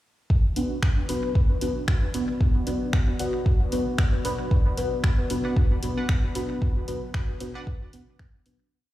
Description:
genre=dub techno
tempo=114 BPM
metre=4/4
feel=swing 56% on 16ths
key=B minor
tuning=A4 = 441 Hz
part: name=deep dark ambient pad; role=sustained chords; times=1.6-8.7 s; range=B3 to D5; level=-36 LUFS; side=left 1 dB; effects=chorus, built-in reverb, sidechain pumping
part: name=electronic kick drum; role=drums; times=0.3-8.3 s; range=none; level=-22 LUFS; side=equal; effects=none
part: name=deep mellow chord stab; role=stabs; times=0.6-8.6 s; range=B3 to B4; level=-29 LUFS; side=equal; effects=chorus, phaser, sidechain pumping, dub echo
part: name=deep house drum kit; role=drums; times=0.6-8.6 s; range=finger snaps, hi-hat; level=-34 LUFS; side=equal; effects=dub echo
part: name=wavetable chord stab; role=riff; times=5.4-7.8 s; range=D4 to F#5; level=-39 LUFS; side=right 1 dB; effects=sidechain pumping, dub echo
room=light reverb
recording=played on a big sound system in a bare room, large studio reverb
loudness=-22 LUFS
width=side -15 dB against mid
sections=0.3-8.7 groove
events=fade-out 5.9-8.7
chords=0.3 Bm

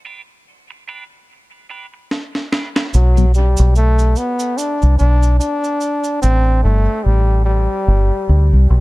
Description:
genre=dub reggae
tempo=73 BPM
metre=4/4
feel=swing 58% on 16ths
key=B phrygian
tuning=A4 = 437 Hz
part: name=clean electric guitar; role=accompaniment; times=0.1-2.9 s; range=D4 to B4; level=-34 LUFS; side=right 4 dB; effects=harmonic tremolo, high-pass filter, dub echo
part: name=electronic snare drum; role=drums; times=2.1-2.9 s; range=none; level=-21 LUFS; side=equal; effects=dub echo
part: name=bright trombone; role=melody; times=2.9-8.8 s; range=F#3 to D4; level=-19 LUFS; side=left 1 dB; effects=dub echo
part: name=deep dub fingered electric bass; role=bass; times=2.9-8.8 s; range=G1 to D2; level=-11 LUFS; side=equal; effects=none
part: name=cabasa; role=percussion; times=2.9-6.4 s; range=none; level=-31 LUFS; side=right 5 dB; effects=high-pass filter on perc
part: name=mellow tonewheel organ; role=accompaniment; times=3.2-3.3 s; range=B2 to F#3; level=-19 LUFS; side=left 5 dB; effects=slow rotary speaker
room=small room ambience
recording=dark, warm production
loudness=-13 LUFS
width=side -20 dB against mid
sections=0.0-2.9 A section; 2.9-8.8 B section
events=drum fill 2.1-2.9; part muted 2.9-8.8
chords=0.0 G/D; 2.9 Bm; 6.2 A7(no3)

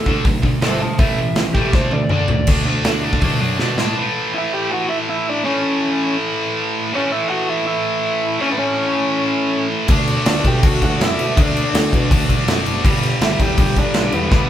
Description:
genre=punk rock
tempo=162 BPM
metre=4/4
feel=straight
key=A mixolydian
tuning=A4 = 440 Hz
part: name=crunchy overdriven guitar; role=melody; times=0.0-14.5 s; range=B3 to A5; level=-22 LUFS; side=equal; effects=none
part: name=tight distorted guitar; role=riff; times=0.0-14.5 s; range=G2 to D4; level=-20 LUFS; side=equal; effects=distortion
part: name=fuzz picked electric bass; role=bass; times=0.1-3.9, 9.9-14.5 s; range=F#1 to D3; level=-24 LUFS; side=equal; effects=overdrive
part: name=big rock drum kit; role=drums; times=0.1-3.9, 9.9-14.4 s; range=crash cymbal, hi-hat, kick drum, snare drum, toms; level=-17 LUFS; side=equal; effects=none
room=light reverb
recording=band playing live in one room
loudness=-15 LUFS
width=side -11 dB against mid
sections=0.0-2.5 A section; 2.5-4.0 B section; 4.0-14.5 C section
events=overdriven electric guitar solo 0.0-2.5; drum fill 1.7-2.5, 3.6-4.0, 14.3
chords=0.0 D5; 1.0 A5; 1.7 D5; 4.0 A; 9.9 D; 12.9 G

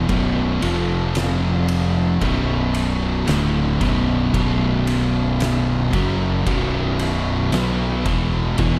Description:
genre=stoner and doom metal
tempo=56 BPM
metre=4/4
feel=straight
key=B phrygian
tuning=A4 = 440 Hz
part: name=biting overdriven guitar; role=riff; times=0.0-8.8 s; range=B1 to B3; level=-27 LUFS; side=equal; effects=none
part: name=thick fuzz guitar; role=riff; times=0.0-8.8 s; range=B1 to B3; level=-26 LUFS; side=equal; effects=distortion
part: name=thick fuzz guitar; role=riff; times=0.0-8.8 s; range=B1 to B3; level=-26 LUFS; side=equal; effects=distortion
part: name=fuzz fingered electric bass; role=bass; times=0.0-8.8 s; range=B0 to B1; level=-27 LUFS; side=equal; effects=overdrive
part: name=oversized low-tuned drum kit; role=drums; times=0.1-8.8 s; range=kick drum, ride cymbal, snare drum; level=-28 LUFS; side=equal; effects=none
room=small room ambience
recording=none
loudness=-20 LUFS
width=mono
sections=0.0-8.8 A section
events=none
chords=0.0 B5; 0.6 F5; 2.2 Bm

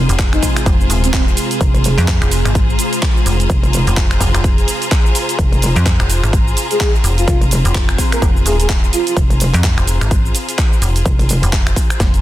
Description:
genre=bass house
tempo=127 BPM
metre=4/4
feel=swing 59% on 16ths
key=F minor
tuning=A4 = 439 Hz
part: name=deep dark ambient pad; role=sustained chords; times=0.0-12.2 s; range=C4 to C5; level=-26 LUFS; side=equal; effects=chorus, built-in reverb, vintage 12-bit sampler grit, sidechain pumping
part: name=metallic wobble bass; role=bass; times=0.0-11.4 s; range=F1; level=-16 LUFS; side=equal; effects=chorus, overdrive, sidechain pumping
part: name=bright studio string section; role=texture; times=0.0-12.2 s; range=F4 to Bb5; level=-23 LUFS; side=left 1 dB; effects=sidechain pumping
part: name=metallic FM bass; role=bass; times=0.1-12.2 s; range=Eb1 to F2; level=-16 LUFS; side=equal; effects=tube saturation, sidechain pumping
part: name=house drum kit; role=drums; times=0.1-12.2 s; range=cabasa, finger snaps, handclaps, hi-hat, snare drum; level=-21 LUFS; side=right 1 dB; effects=soft clipping on snare
part: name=electronic kick drum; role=drums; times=0.2-12.1 s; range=none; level=-14 LUFS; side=equal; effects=overdrive
part: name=breathy flute-like synth lead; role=melody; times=0.3-1.2, 6.7-9.1 s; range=C4 to Bb4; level=-21 LUFS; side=right 1 dB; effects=lush chorus, tape echo
room=digital ambience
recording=dense, heavily limited modern master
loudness=-12 LUFS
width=side -14 dB against mid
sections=0.0-12.2 A section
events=drum fill 12.0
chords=0.0 Fm

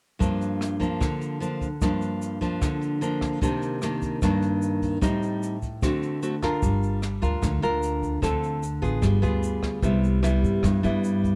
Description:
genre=bossa nova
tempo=150 BPM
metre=4/4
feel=straight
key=G minor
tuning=A4 = 440 Hz
part: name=nylon-string guitar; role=accompaniment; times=0.2-11.4 s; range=G2 to Bb4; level=-27 LUFS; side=equal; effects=none
part: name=jazz brush drum kit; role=drums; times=0.2-11.3 s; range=hi-hat, kick drum, rim click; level=-32 LUFS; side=equal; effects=none
part: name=egg shaker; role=percussion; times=0.2-11.4 s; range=none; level=-49 LUFS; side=equal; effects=none
part: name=upright bass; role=bass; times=6.6-11.4 s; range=G1 to G2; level=-28 LUFS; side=equal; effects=none
room=light reverb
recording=dark, warm production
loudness=-25 LUFS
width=mono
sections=0.2-6.6 A section; 6.6-11.4 B section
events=none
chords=0.2 Gm7; 3.4 Cm9; 5.0 Am7b5; 5.8 D7; 6.6 Gm7; 8.2 Dm7; 9.0 G7b9; 9.8 Cmaj7

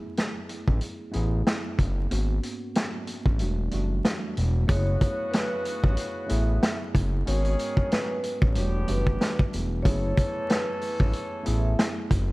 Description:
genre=hip hop, boom-bap hip-hop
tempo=93 BPM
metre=4/4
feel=swing 55% on 16ths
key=F# minor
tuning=A4 = 440 Hz
part: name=tine electric piano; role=accompaniment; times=0.0-12.3 s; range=E2 to G#4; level=-34 LUFS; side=right 1 dB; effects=medium stereo tremolo, high-pass filter, low-pass filter
part: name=vintage drum kit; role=drums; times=0.2-12.3 s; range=hi-hat, kick drum, snare drum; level=-25 LUFS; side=equal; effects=none
part: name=smooth synth bass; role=bass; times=0.7-12.3 s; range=E1 to A1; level=-25 LUFS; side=equal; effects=none
part: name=vibraphone with medium mallets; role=melody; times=4.7-11.9 s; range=B4 to E5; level=-32 LUFS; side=equal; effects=high-pass filter, low-pass filter, digital delay
part: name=clear horn section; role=stabs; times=4.7-12.1 s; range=C#3 to A4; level=-38 LUFS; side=equal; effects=high-pass filter, low-pass filter, digital delay
part: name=sleigh bells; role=percussion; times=4.7-12.3 s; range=none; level=-50 LUFS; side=right 4 dB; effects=none
room=studio reverb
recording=dark, warm production, vinyl crackle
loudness=-23 LUFS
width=side -22 dB against mid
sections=0.0-4.7 A section; 4.7-12.3 B section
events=kick muted 3.4-4.7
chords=0.0 F#m11; 2.1 G#m11; 3.4 Em11; 4.7 F#m11; 7.3 G#m7; 8.6 Em11; 9.8 F#m11

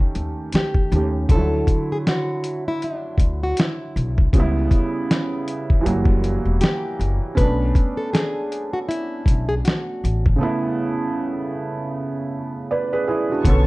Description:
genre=lo-fi hip hop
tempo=79 BPM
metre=4/4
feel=swing 58% on 16ths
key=B minor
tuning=A4 = 440 Hz
part: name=felt-muted upright piano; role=accompaniment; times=0.0-13.7 s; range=C#3 to D5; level=-24 LUFS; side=right 2 dB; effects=cassette tape
part: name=upright bass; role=bass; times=0.2-13.7 s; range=E1 to D#3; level=-22 LUFS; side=equal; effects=none
part: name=dusty soul sampler-style drum kit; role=drums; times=0.2-13.7 s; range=hi-hat, kick drum, snare drum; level=-18 LUFS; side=equal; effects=none
part: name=nylon-string guitar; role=melody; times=0.6-10.2 s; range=D4 to B4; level=-26 LUFS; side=left 1 dB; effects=none
part: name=warm studio string section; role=sustained chords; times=13.4-13.7 s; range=B4 to C#6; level=-27 LUFS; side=left 2 dB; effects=none
room=light reverb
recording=dark, warm production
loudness=-19 LUFS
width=side -21 dB against mid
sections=0.0-13.4 A section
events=break 10.4-13.4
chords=0.0 D#7#11; 1.3 Dmaj9; 4.3 C#m7b5; 5.8 F#7b9; 7.4 Bm9

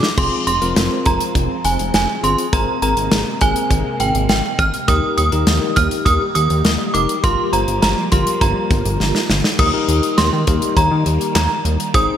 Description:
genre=synth-pop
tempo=102 BPM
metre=4/4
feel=straight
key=Eb major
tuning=A4 = 442 Hz
part: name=synth chime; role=melody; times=0.0-12.2 s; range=G5 to F6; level=-20 LUFS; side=right 2 dB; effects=ensemble chorus
part: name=bell-like tine electric piano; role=accompaniment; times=0.0-12.2 s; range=C4 to C5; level=-24 LUFS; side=left 5 dB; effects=none
part: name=modern studio drum kit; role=drums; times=0.0-12.1 s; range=crash cymbal, handclaps, hi-hat, kick drum, snare drum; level=-19 LUFS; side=equal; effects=gated reverb
part: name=phased string machine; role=sustained chords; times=0.2-12.2 s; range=C3 to C4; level=-25 LUFS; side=equal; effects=ensemble chorus, phaser
part: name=chorused synth bass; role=bass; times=0.2-12.1 s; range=F1 to Eb3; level=-19 LUFS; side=equal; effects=none
room=light reverb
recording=bright 1980s-style digital production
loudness=-14 LUFS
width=side -9 dB against mid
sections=0.2-9.6 A section; 9.6-12.2 B section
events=drum fill 0.0, 9.0-9.6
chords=0.2 Fm; 2.5 Abadd9; 4.9 Eb; 7.2 Gm7; 9.6 Eb

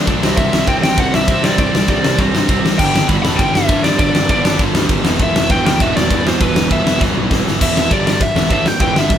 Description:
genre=punk rock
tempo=199 BPM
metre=4/4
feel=straight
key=E minor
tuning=A4 = 440 Hz
part: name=distorted electric guitar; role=riff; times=0.0-9.2 s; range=E2 to D4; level=-24 LUFS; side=left 7 dB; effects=overdrive
part: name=overdriven electric guitar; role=riff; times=0.0-9.2 s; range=E2 to D4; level=-21 LUFS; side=right 8 dB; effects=none
part: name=thick fuzz guitar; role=riff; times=0.0-9.2 s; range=E2 to E4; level=-23 LUFS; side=left 1 dB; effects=none
part: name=fuzz picked electric bass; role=bass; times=0.0-9.2 s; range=E1 to C3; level=-21 LUFS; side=equal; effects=overdrive
part: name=big rock drum kit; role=drums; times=0.1-9.2 s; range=crash cymbal, kick drum, ride cymbal, snare drum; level=-16 LUFS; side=equal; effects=none
part: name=high-gain lead guitar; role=melody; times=0.4-9.2 s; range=B4 to B5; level=-18 LUFS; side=left 1 dB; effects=distortion
room=light reverb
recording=band playing live in one room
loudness=-12 LUFS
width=side -10 dB against mid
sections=0.0-7.6 A section; 7.6-9.2 B section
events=drum fill 7.0-7.6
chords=0.2 C; 2.8 Em; 7.6 E5; 7.9 G5; 8.2 Em

